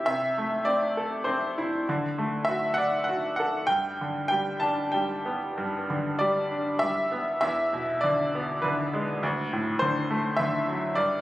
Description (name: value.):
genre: classical, lyrical solo piano.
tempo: 93-105 BPM.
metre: 3/4.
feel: rubato.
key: unclear.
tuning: A4 = 440 Hz.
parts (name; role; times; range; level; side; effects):
bright upright piano; solo; 0.0-11.2 s; D2 to A5; -24 LUFS; equal; none.
room: moderate concert hall reverb, RT60 2.4 s.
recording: recorded on a phone in the room, club reverb, compression.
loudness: -24 LUFS.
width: side -16 dB against mid.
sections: 0.0-11.2 A section.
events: none.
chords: 0.1 Am/C; 1.9 D; 3.7 G; 7.4 E7; 9.2 D7.